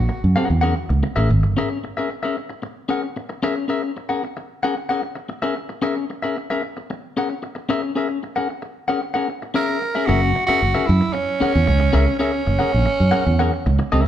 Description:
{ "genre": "funk", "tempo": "113 BPM", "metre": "4/4", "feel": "straight", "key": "F# mixolydian", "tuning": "A4 = 441 Hz", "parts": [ { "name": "raspy tenor saxophone", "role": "melody", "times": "0.0-1.0, 9.6-14.0 s", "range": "C#4 to A#4", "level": "-22 LUFS", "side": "right 3 dB", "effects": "none" }, { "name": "fingered electric bass", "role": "bass", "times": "0.0-1.5, 10.1-14.1 s", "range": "F#1 to F#2", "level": "-18 LUFS", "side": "right 1 dB", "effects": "none" }, { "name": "clean electric guitar", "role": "accompaniment", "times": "0.1-14.1 s", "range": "C#4 to F#5", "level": "-22 LUFS", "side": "left 3 dB", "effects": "none" } ], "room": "moderate large studio reverb, RT60 1.1 s", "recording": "band playing live in one room", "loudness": "-18 LUFS", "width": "side -10 dB against mid", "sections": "0.0-1.6 A section; 1.6-10.1 B section; 10.1-14.1 A section", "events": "none", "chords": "0.0 F#9" }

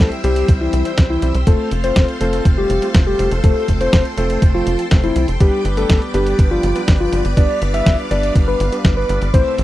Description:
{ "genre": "italo disco", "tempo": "122 BPM", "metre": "4/4", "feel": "straight", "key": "unclear", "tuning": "A4 = 440 Hz", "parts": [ { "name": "soft octave-layered synth lead", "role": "melody", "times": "0.0-9.6 s", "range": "E4 to E5", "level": "-20 LUFS", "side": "left 2 dB", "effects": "chorus, tape echo" }, { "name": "string machine, full ensemble", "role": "sustained chords", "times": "0.0-9.6 s", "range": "C4 to E6", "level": "-26 LUFS", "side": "right 1 dB", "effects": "ensemble chorus" }, { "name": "clear electric grand piano", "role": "stabs", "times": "0.0-9.6 s", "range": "G3 to C5", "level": "-25 LUFS", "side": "equal", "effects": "none" }, { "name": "tight sequencer bass", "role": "bass", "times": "0.0-9.6 s", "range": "F1 to C2", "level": "-19 LUFS", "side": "equal", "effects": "none" }, { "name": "dusty soul sampler-style drum kit", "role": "drums", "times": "0.1-9.6 s", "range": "hi-hat, snare drum", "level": "-20 LUFS", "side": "equal", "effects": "none" }, { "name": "electronic kick drum", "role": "drums", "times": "0.5-9.4 s", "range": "none", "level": "-14 LUFS", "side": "equal", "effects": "none" } ], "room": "little or no reverb", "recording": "dry, close 1970s-style studio recording", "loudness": "-13 LUFS", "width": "side -15 dB against mid", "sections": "0.0-9.6 A section", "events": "none", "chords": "0.0 C; 1.5 F; 5.4 G" }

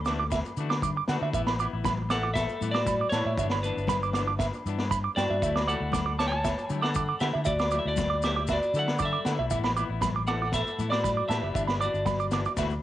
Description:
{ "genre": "highlife guitar band", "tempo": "118 BPM", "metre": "4/4", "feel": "straight", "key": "D major", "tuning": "A4 = 442 Hz", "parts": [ { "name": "clean electric guitar", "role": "melody", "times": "0.0-12.8 s", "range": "C#4 to A5", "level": "-31 LUFS", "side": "equal", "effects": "spring reverb, cassette tape, analog delay" }, { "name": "fingered electric bass", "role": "bass", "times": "0.0-12.8 s", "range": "F#1 to D3", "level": "-31 LUFS", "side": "left 1 dB", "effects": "none" }, { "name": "semi-hollow electric guitar", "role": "accompaniment", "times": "0.1-12.7 s", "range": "E3 to F#4", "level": "-37 LUFS", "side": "left 9 dB", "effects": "cassette tape" }, { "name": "clean electric guitar", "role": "arpeggios", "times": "0.1-12.6 s", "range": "E5 to D6", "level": "-31 LUFS", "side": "right 6 dB", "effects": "cassette tape, analog delay" }, { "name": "vintage drum kit", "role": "drums", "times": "0.1-12.7 s", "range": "kick drum, snare drum", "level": "-33 LUFS", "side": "left 1 dB", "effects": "cassette tape" }, { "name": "congas", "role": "percussion", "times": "0.1-12.6 s", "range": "none", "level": "-38 LUFS", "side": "left 8 dB", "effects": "none" }, { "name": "maracas", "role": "percussion", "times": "0.1-12.8 s", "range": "none", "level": "-45 LUFS", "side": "left 10 dB", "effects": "none" }, { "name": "agogo bells", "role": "percussion", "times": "0.3-12.7 s", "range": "none", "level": "-40 LUFS", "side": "left 7 dB", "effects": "none" } ], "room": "light reverb", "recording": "home recording on cassette", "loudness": "-25 LUFS", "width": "side -13 dB against mid", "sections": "0.0-12.8 A section", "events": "drum fill 12.6", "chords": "0.0 Dadd9; 1.3 Asus2; 3.4 G6; 5.4 Dadd9; 9.5 Asus2; 11.5 G6" }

